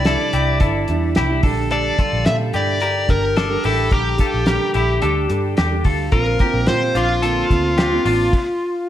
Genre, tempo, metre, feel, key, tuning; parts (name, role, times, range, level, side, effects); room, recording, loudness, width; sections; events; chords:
jangly indie pop; 109 BPM; 4/4; straight; A4 = 440 Hz
dark smooth lead guitar; melody; 0.0-8.9 s; F4 to E5; -21 LUFS; left 1 dB; overdrive, plate reverb
fingerpicked plugged-in steel-string acoustic guitar; accompaniment; 0.0-8.3 s; Bb2 to A4; -24 LUFS; right 6 dB
semi-hollow electric guitar; arpeggios; 0.0-8.3 s; D4 to Bb4; -23 LUFS; left 3 dB; wide subtle chorus
vintage muted picked electric bass; bass; 0.0-8.3 s; G1 to Bb2; -22 LUFS; equal
cloth-damped thuddy drum kit; drums; 0.0-8.5 s; crash cymbal, hi-hat, kick drum, snare drum; -20 LUFS; equal
moderate large studio reverb, RT60 0.8 s; -15 LUFS; side -12 dB against mid
0.0-8.9 A section
stop 8.3-8.9
0.0 Cadd9; 1.4 Gmadd9; 6.1 Bbadd9